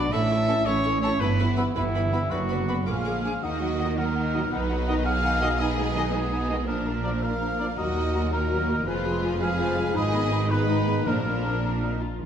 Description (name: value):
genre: cinematic, heroic adventure film score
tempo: 110 BPM (dotted quarters)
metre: 6/8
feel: straight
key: Eb harmonic minor from 3.4 s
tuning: A4 = 441 Hz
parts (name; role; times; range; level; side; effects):
- rich studio violin section; second line; 0.0-12.0 s; G3 to E#5; -37 LUFS; left 2 dB; none
- silver concert flute; second line; 0.0-12.1 s; F#5 to B5; -37 LUFS; left 3 dB; none
- clear trombone section; sustained chords; 0.0-12.0 s; F2 to D4; -36 LUFS; right 2 dB; none
- mellow French horn section; sustained chords; 0.0-12.3 s; E3 to Ab4; -33 LUFS; left 4 dB; none
- clear trumpet; stabs; 0.0-12.0 s; E4 to E5; -31 LUFS; right 1 dB; none
- bright studio double bass section; bass; 0.0-12.3 s; F1 to Eb2; -30 LUFS; right 2 dB; none
- rich symphonic cello section; bass; 0.0-12.3 s; Eb2 to Eb3; -30 LUFS; right 2 dB; none
- rich studio violin section; melody; 0.1-12.0 s; Cb4 to D6; -36 LUFS; left 4 dB; none
- warm symphonic viola section; accompaniment; 0.1-12.2 s; D#3 to B4; -33 LUFS; equal; none
- dark clarinet; second line; 0.5-12.1 s; B3 to Gb4; -35 LUFS; left 2 dB; none
- mellow oboe; second line; 0.5-12.0 s; Ab4 to F5; -32 LUFS; equal; none
- timpani; percussion; 11.1-11.6 s; Bb2; -36 LUFS; left 3 dB; none
room: wet scoring stage reverb, RT60 1.4 s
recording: none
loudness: -22 LUFS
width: side -8 dB against mid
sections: 0.0-3.4 A section; 3.4-12.2 B section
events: none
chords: 0.1 A; 1.2 Em/G; 2.3 Bm/F#; 2.9 A#7; 3.4 Ebm; 4.5 B; 5.6 Abm/Cb; 6.7 Bb; 7.8 Ebm; 8.9 Fdim; 10.0 Abm; 11.1 Bb